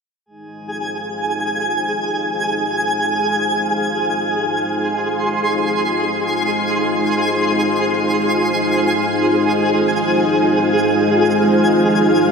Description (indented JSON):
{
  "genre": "ambient",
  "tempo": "free time",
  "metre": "none",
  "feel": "none",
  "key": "F minor",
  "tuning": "A4 = 442 Hz",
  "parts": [
    { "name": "string machine, full ensemble", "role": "sustained chords", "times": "0.3-12.3 s", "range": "Ab3 to F5", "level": "-18 LUFS", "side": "equal", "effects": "ensemble chorus" },
    { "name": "twinkling granular texture", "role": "texture", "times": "0.7-12.3 s", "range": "Ab4 to C6", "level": "-18 LUFS", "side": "equal", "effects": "built-in reverb" }
  ],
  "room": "wet shimmer reverb, RT60 7.2 s",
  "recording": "none",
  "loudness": "-15 LUFS",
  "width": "side -5 dB against mid",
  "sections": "0.3-12.3 A section",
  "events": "fade-in on string machine 0.3-12.3",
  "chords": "0.3 Fm7"
}